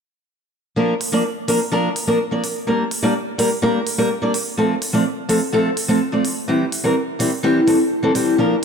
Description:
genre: EDM, festival progressive house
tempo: 126 BPM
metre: 4/4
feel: straight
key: unclear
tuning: A4 = 439 Hz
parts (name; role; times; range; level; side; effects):
- fingerpicked steel-string acoustic guitar; accompaniment; 0.8-8.6 s; E3 to D5; -17 LUFS; equal; vintage 12-bit sampler grit, digital delay
- electronic hi-hat; drums; 1.0-8.2 s; none; -26 LUFS; right 1 dB; none
room: moderate lush hall reverb, RT60 2.3 s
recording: none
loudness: -17 LUFS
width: side -6 dB against mid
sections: 0.8-8.6 A section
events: none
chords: 0.8 Bb/F; 2.7 Gm; 4.6 F; 6.5 C

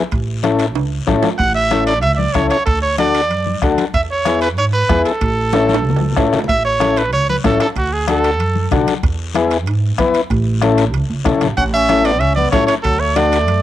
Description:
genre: latin, cumbia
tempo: 188 BPM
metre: 4/4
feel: straight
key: A major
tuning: A4 = 443 Hz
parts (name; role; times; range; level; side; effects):
- overdriven combo organ; accompaniment; 0.0-13.4 s; B3 to B4; -17 LUFS; left 4 dB; cassette tape
- upright bass; bass; 0.1-13.6 s; A1 to G#2; -19 LUFS; right 2 dB; none
- bombo; percussion; 0.1-13.3 s; none; -21 LUFS; left 1 dB; none
- congas; percussion; 0.1-13.6 s; none; -25 LUFS; left 6 dB; none
- guiro; percussion; 0.1-13.6 s; none; -31 LUFS; left 9 dB; none
- timbales; percussion; 0.1-13.6 s; none; -27 LUFS; right 12 dB; none
- bright trumpet; melody; 1.4-8.7, 11.6-13.6 s; F#4 to F#5; -17 LUFS; right 2 dB; cassette tape
- growling trombone; second line; 11.6-13.6 s; F#3 to C#4; -22 LUFS; left 5 dB; cassette tape
room: light reverb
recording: home recording on cassette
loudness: -13 LUFS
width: side -12 dB against mid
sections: 0.0-6.5 A section; 6.5-13.6 A section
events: drum fill 0.8-1.4, 5.5-6.5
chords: 0.1 A; 2.7 D; 3.9 E; 5.2 A; 7.8 D; 9.0 E; 10.3 A; 12.8 D

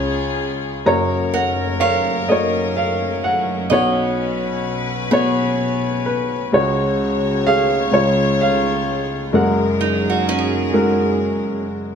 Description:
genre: acoustic folk-pop ballad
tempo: 42 BPM (dotted quarters)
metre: 6/8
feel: straight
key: F# major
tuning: A4 = 435 Hz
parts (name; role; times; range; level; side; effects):
- dark upright piano; melody; 0.0-11.9 s; F#1 to A#5; -17 LUFS; equal; none
- warm chamber string section; sustained chords; 0.0-11.9 s; C#2 to C#5; -24 LUFS; left 2 dB; none
- picked acoustic archtop guitar; arpeggios; 1.3-11.7 s; C#4 to D#5; -25 LUFS; right 5 dB; none
room: moderate large studio reverb, RT60 0.8 s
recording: dark, warm production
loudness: -16 LUFS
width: side -7 dB against mid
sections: 0.0-11.9 A section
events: none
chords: 0.0 C#; 0.9 F#; 3.7 Bsus2; 6.5 C#sus4; 7.9 C#; 9.3 F#add9

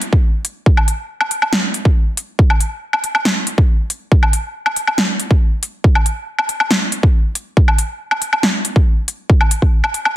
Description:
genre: dubstep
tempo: 139 BPM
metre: 4/4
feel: half-time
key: none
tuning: none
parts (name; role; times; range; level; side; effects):
- big-room dance drum kit; drums; 0.0-10.1 s; hi-hat, snare drum, woodblock; -17 LUFS; equal; overdrive
- electronic kick drum; drums; 0.1-9.7 s; none; -12 LUFS; equal; overdrive
room: light reverb, digital ambience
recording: dense, heavily limited modern master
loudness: -14 LUFS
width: side -14 dB against mid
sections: 0.0-10.2 A section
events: none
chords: none

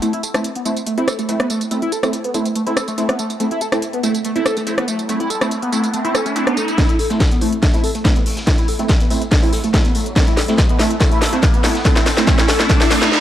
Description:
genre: driving peak-time techno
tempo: 142 BPM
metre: 4/4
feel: straight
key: A minor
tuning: A4 = 440 Hz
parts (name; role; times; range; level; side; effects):
- overdriven synth lead; riff; 0.0-13.1 s; A3 to A4; -21 LUFS; equal; distortion, phaser, tube saturation, analog chorus, vintage 12-bit sampler grit, sidechain pumping, analog delay
- rave stab; stabs; 0.0-13.1 s; A3 to E4; -22 LUFS; right 1 dB; chorus, built-in reverb, sidechain pumping, analog delay
- techno drum kit; drums; 0.0-13.2 s; hi-hat, rim click, snare drum, tambourine; -21 LUFS; equal; overdrive, sidechain pumping on hats, high-pass filter on hats, sidechain pumping on perc, high-pass filter on perc, high-pass filter on snare
- riser and reverse cymbal; sound effects; 4.6-13.2 s; none; -24 LUFS; equal; none
- electronic kick drum; drums; 6.8-12.8 s; none; -15 LUFS; equal; none
- vintage drum kit; drums; 6.8-13.1 s; hi-hat, snare drum, tambourine; -31 LUFS; equal; sidechain pumping on hats, high-pass filter on hats, high-pass filter on snare, sidechain pumping on perc, high-pass filter on perc, high-pass filter on room
room: light reverb, studio reverb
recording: dry, gritty hardware recording, cassette tape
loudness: -14 LUFS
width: side -12 dB against mid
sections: 0.0-6.8 A section; 6.8-13.2 B section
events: filter sweep on synth stab 0.0-6.8, 6.8-13.2; riser 4.6-6.8, 6.8-13.2; build-up 6.8-13.2; drum fill 6.8-13.1; filter sweep on analog synth lead 6.8-13.2; reverse cymbal 12.7-13.2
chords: 0.0 Am

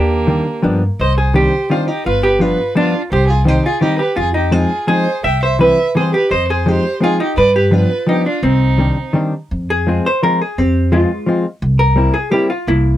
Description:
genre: musette waltz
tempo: 170 BPM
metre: 3/4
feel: rubato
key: C harmonic minor, F harmonic minor from 9.5 s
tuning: A4 = 442 Hz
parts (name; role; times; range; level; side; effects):
- vintage hollow-body jazz guitar; melody; 0.0-13.0 s; Ab3 to E5; -16 LUFS; equal; none
- warm violin; second line; 0.0-9.1 s; Bb3 to G5; -21 LUFS; right 3 dB; none
- upright bass; bass; 0.0-13.0 s; G1 to G2; -16 LUFS; equal; none
- hollow-body jazz guitar; accompaniment; 0.3-12.5 s; Eb3 to F4; -16 LUFS; left 1 dB; none
room: moderate booth ambience, RT60 0.2 s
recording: none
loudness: -12 LUFS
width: side -13 dB against mid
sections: 1.0-9.5 A section; 9.5-13.0 B section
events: none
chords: 0.0 Ebmaj7; 0.6 G7; 1.0 Cmadd9; 2.1 G7; 3.1 Cm; 4.2 Fm7; 5.2 C; 6.3 Fm7; 7.4 G7; 8.4 Cmadd9; 9.5 Fm; 11.6 C7

